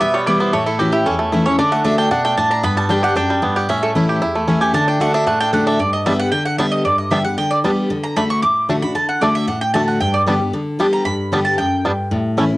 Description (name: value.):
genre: bluegrass.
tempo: 228 BPM.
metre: 4/4.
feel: straight.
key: unclear.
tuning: A4 = 440 Hz.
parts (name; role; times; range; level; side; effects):
bluegrass banjo; melody; 0.0-12.4 s; G3 to G4; -20 LUFS; right 1 dB; cassette tape, plate reverb, tape echo.
picked steel-string acoustic guitar; accompaniment; 0.0-12.6 s; E2 to G4; -18 LUFS; left 1 dB; cassette tape.
mandolin; stabs; 0.0-12.1 s; F#4 to D6; -19 LUFS; right 1 dB; cassette tape.
room: moderate small room reverb, RT60 0.5 s.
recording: home recording on cassette.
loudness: -15 LUFS.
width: side -19 dB against mid.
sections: 0.0-5.8 A section; 5.8-12.6 A section.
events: mandolin solo 0.0-12.6.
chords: 0.0 Em; 0.5 A; 1.6 D; 2.6 G; 3.7 A; 4.7 D; 5.8 G; 7.9 D; 10.0 G.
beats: 0.01 0.27 | 0.53 0.80 1.06 1.32 | 1.59 1.85 2.11 2.38 | 2.64 2.90 3.17 3.43 | 3.69 3.95 4.22 4.48 | 4.74 5.01 5.27 5.53 | 5.79 6.06 6.32 6.58 | 6.85 7.11 7.37 7.64 | 7.90 8.16 8.43 8.69 | 8.95 9.22 9.48 9.74 | 10.01 10.27 10.53 10.79 | 11.06 11.32 11.58 11.85 | 12.11 12.37.